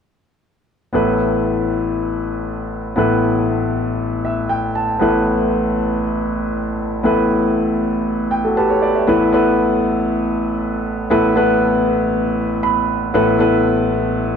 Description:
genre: pop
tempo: 118 BPM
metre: 4/4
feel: straight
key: unclear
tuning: A4 = 440 Hz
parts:
  - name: warm concert grand piano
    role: solo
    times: 0.9-14.4 s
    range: A1 to B5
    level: -15 LUFS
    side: equal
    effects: tape echo
room: moderate plate reverb, RT60 3.6 s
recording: none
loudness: -15 LUFS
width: side -7 dB against mid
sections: 0.9-9.1 A section; 9.1-14.4 B section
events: grand piano fill 4.0-5.0, 8.1-9.1, 12.4-13.1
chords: 0.9 Asus2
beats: | 0.94 1.45 1.96 2.47 | 2.98 3.48 3.99 4.50 | 5.01 5.52 6.03 6.54 | 7.04 7.55 8.06 8.57 | 9.08 9.59 10.09 10.60 | 11.11 11.62 12.13 12.64 | 13.14 13.65 14.16

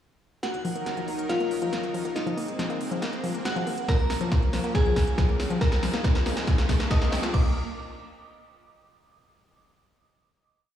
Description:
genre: uplifting trance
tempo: 139 BPM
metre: 4/4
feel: straight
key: Bb minor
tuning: A4 = 440 Hz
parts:
  - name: glassy synth bell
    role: second line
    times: 0.4-7.5 s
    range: Eb4 to Eb6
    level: -31 LUFS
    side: equal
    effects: chorus, dub echo
  - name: supersaw pad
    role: sustained chords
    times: 0.4-7.5 s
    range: Bb2 to Bb4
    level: -35 LUFS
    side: right 1 dB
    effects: vintage 12-bit sampler grit, sidechain pumping
  - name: wide unison pluck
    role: arpeggios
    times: 0.4-7.5 s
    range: F3 to F4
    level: -32 LUFS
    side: left 3 dB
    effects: sidechain pumping, dub echo
  - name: big-room dance drum kit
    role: drums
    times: 0.4-7.4 s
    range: crash cymbal, hi-hat, snare drum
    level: -33 LUFS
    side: equal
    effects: none
  - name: riser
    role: sound effects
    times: 1.8-7.3 s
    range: none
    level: -38 LUFS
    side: equal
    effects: none
  - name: tight sequencer bass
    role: bass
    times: 0.5-7.5 s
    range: Eb1 to Bb2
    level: -43 LUFS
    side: equal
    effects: none
  - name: electronic kick drum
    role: drums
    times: 3.9-7.4 s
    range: none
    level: -23 LUFS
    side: equal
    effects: none
room: moderate digital room reverb, RT60 1.1 s, digital ambience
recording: played on a big sound system in a bare room, large studio reverb, small room ambience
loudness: -23 LUFS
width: side -10 dB against mid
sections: 0.4-7.3 build; 7.3-9.1 final chord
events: build-up 0.4-7.3; drum fill 0.4-7.3; filter sweep on synth arpeggio sound 0.4-7.3; riser 1.8-7.3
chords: 0.4 Ebm; 2.2 Abadd9; 3.9 Bbm; 5.6 Fm7; 7.3 Bb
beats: | 0.43 0.86 1.29 1.73 | 2.16 2.59 3.02 3.45 | 3.88 4.32 4.75 5.18 | 5.61 6.04 6.47 6.91 | 7.34

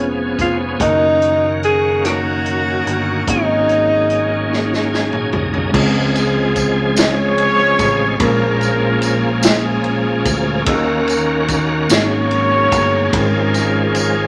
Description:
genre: slow gospel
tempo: 49 BPM (dotted quarters)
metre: 6/8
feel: straight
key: Db major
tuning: A4 = 439 Hz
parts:
  - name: mellow tenor saxophone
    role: melody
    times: 0.0-4.9 s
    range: Eb4 to Ab4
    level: -18 LUFS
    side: equal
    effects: none
  - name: mellow tine electric piano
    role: accompaniment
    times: 0.0-14.3 s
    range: Ab2 to Db5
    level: -22 LUFS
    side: equal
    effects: none
  - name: bright tonewheel organ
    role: sustained chords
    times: 0.0-14.3 s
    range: Db3 to Ab5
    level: -23 LUFS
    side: equal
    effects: fast rotary speaker, overdrive, chorus vibrato
  - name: fingered electric bass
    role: bass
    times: 0.0-14.3 s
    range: F1 to Eb2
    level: -24 LUFS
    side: equal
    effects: none
  - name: swinging big-band drum kit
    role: drums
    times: 0.4-14.1 s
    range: crash cymbal, hi-hat, kick drum, ride cymbal, rim click, snare drum, toms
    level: -24 LUFS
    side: equal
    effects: none
  - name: tambourine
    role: percussion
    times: 6.2-14.3 s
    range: none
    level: -29 LUFS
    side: equal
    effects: none
  - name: warm horn section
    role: melody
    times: 7.0-14.3 s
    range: Ab3 to Db5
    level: -21 LUFS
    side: equal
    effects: none
room: moderate studio reverb, RT60 0.7 s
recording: none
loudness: -16 LUFS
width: mono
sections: 0.0-5.7 A section; 5.7-14.3 B section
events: drum fill 4.5-5.7; tonewheel organ fill 4.5-5.7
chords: 0.0 Db7/F; 0.8 Gb6; 3.3 Ab9sus4; 5.7 Dbmaj7; 8.2 Bbm7; 10.7 Ebm7; 11.9 Ab9sus4; 13.1 Db/Ab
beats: | 0.80 2.03 | 3.27 4.50 | 5.74 6.97 | 8.20 9.44 | 10.67 11.90 | 13.13

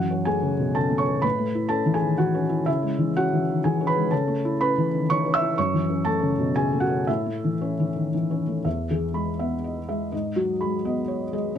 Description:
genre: neoclassical minimalist piano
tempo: 124 BPM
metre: 3/4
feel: rubato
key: unclear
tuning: A4 = 442 Hz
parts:
  - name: felt-muted upright piano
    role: solo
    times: 0.0-11.6 s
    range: E2 to E6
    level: -22 LUFS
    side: equal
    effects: none
room: light reverb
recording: close, detailed microphones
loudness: -22 LUFS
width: side -9 dB against mid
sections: 0.0-8.7 A section; 8.7-11.6 B section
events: none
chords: 0.0 F#m7; 1.2 A; 2.7 C#m; 4.1 A/C#; 5.6 F#m7; 7.1 A; 8.7 E; 10.1 G#m7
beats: 0.27 0.76 | 1.24 1.71 2.19 | 2.67 3.15 3.63 | 4.11 4.60 5.09 | 5.57 6.06 6.56 | 7.08 7.61 8.14 | 8.66 9.15 9.64 | 10.12 10.61 11.09 | 11.57

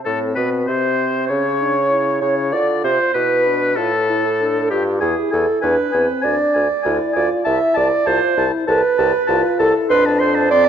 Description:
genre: quick classical-period movement for wind quintet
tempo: 98 BPM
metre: 4/4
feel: straight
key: A minor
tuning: A4 = 440 Hz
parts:
  - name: mellow hollow concert flute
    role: melody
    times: 0.0-10.7 s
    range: G4 to E5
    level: -24 LUFS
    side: left 7 dB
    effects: none
  - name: dark clarinet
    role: accompaniment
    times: 0.0-10.7 s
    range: G4 to E5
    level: -18 LUFS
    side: right 5 dB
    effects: none
  - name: warm oboe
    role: second line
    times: 0.1-10.7 s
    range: G4 to C6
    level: -22 LUFS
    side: left 5 dB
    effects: none
  - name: dark French horn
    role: accompaniment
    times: 0.1-10.7 s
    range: C4 to A4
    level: -24 LUFS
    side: left 2 dB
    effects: none
  - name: clear bassoon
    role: bass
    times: 0.1-10.7 s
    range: C2 to D3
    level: -22 LUFS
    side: equal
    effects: none
room: moderate recital hall reverb, RT60 1.5 s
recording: worn, warbling old tape, cassette tape, warbly pitch drift, nothing above 8.0 kHz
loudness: -15 LUFS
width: side -8 dB against mid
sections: 0.1-10.7 A section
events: none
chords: 0.1 Am; 1.3 C#m; 2.5 Dm; 5.0 E; 6.2 Ddim; 7.5 Am/C; 9.9 F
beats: | 0.06 0.68 1.30 1.91 | 2.53 3.15 3.77 4.39 | 5.01 5.63 6.24 6.85 | 7.46 8.07 8.69 9.30 | 9.91 10.52

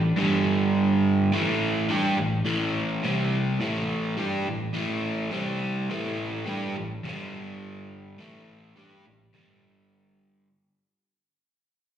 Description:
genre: rock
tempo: 105 BPM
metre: 4/4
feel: straight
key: unclear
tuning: A4 = 440 Hz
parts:
  - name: crunchy overdriven guitar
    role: solo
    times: 0.0-10.5 s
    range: G2 to G4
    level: -24 LUFS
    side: right 1 dB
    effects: slapback echo, tape echo
room: moderate club reverb, RT60 0.9 s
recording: live gig heard through the venue's PA, recital hall reverb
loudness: -23 LUFS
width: side -9 dB against mid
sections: 0.0-1.3 A section; 1.3-10.5 B section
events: fade-out 1.3-10.5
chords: 0.2 G5; 1.3 A5; 3.0 C5; 3.6 A5; 5.3 C5; 5.9 A5; 7.0 G5; 8.2 A5; 9.3 G5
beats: 0.18 0.75 | 1.32 1.90 2.47 3.04 | 3.61 4.18 4.76 5.33 | 5.90 6.47 7.05 7.62 | 8.19 8.77 9.34 9.91

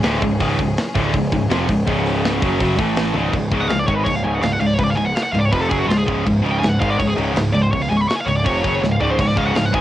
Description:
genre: heavy metal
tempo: 164 BPM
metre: 4/4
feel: straight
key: unclear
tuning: A4 = 440 Hz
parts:
  - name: clear studio string section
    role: sustained chords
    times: 0.0-3.3, 9.2-9.8 s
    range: E3 to A4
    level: -30 LUFS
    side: left 1 dB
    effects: none
  - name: overdriven electric guitar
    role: riff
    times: 0.0-9.8 s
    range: C#2 to A3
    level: -23 LUFS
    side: equal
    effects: cassette tape
  - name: tight distorted guitar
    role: riff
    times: 0.0-9.8 s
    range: C#2 to A3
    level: -21 LUFS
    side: equal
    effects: distortion, cassette tape
  - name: fuzz picked electric bass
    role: bass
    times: 0.0-9.8 s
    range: C#1 to A1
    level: -24 LUFS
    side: equal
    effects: overdrive
  - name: tight metal drum kit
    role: drums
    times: 0.0-9.8 s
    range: crash cymbal, hi-hat, kick drum, snare drum, toms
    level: -24 LUFS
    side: equal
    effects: cassette tape
  - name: high-gain lead guitar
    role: melody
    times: 3.6-9.8 s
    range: E#4 to C#6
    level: -21 LUFS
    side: equal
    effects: distortion, cassette tape
room: little or no reverb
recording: home recording on cassette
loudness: -16 LUFS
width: side -13 dB against mid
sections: 0.0-3.3 A section; 3.3-9.8 B section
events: drum fill 3.1, 8.8-9.2; lead electric guitar solo 3.3-9.8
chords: 0.0 C#; 2.8 A5; 3.1 C#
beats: 0.04 | 0.40 0.77 1.13 1.50 | 1.86 2.23 2.59 2.96 | 3.33 3.69 4.06 4.43 | 4.79 5.16 5.53 5.89 | 6.26 6.62 6.99 7.36 | 7.72 8.09 8.46 8.82 | 9.19 9.56

